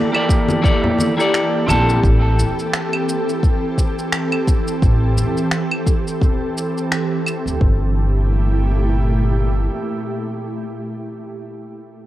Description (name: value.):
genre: sunset chillout.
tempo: 86 BPM.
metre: 4/4.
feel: swing 57% on 16ths.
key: G dorian.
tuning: A4 = 441 Hz.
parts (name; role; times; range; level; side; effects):
electric guitar at the edge of break-up; accompaniment; 0.0-2.4 s; Bb3 to A5; -18 LUFS; equal; auto-pan, digital delay.
ethereal airy pad; sustained chords; 0.0-11.2 s; Bb2 to A4; -21 LUFS; equal; ensemble chorus, built-in reverb.
electronic claves, shaker and finger snaps; drums; 0.1-7.6 s; none; -24 LUFS; equal; small room ambience.
electronic kick drum; drums; 0.3-7.8 s; none; -16 LUFS; equal; small room ambience.
congas; percussion; 0.5-1.8 s; none; -23 LUFS; left 2 dB; none.
upright bass; bass; 1.7-9.7 s; E1 to D2; -17 LUFS; equal; none.
room: light reverb.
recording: worn, warbling old tape, cassette tape, warbly pitch drift.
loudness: -16 LUFS.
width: side -14 dB against mid.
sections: 0.0-7.6 A section; 7.6-10.4 B section.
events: filter sweep on upright bass 0.0-7.6.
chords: 0.0 Gm69; 2.0 Am7; 7.6 Gm69.